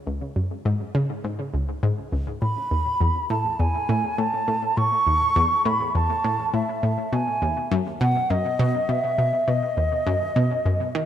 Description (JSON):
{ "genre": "ambient", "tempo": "102 BPM", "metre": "4/4", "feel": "straight", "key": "unclear", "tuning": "A4 = 443 Hz", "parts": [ { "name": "analog pluck", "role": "riff", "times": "0.1-11.1 s", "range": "C#2 to D#3", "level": "-23 LUFS", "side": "equal", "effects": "chorus, analog delay" }, { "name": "mellow hollow silver concert flute", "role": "melody", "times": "2.4-11.1 s", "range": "D#5 to C#6", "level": "-23 LUFS", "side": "right 1 dB", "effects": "analog delay" } ], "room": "wet plate reverb, RT60 3.3 s", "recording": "dark, warm production", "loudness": "-21 LUFS", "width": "side -10 dB against mid", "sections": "0.0-11.1 A section", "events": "none", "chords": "0.0 C#5; 2.4 A5; 7.1 B" }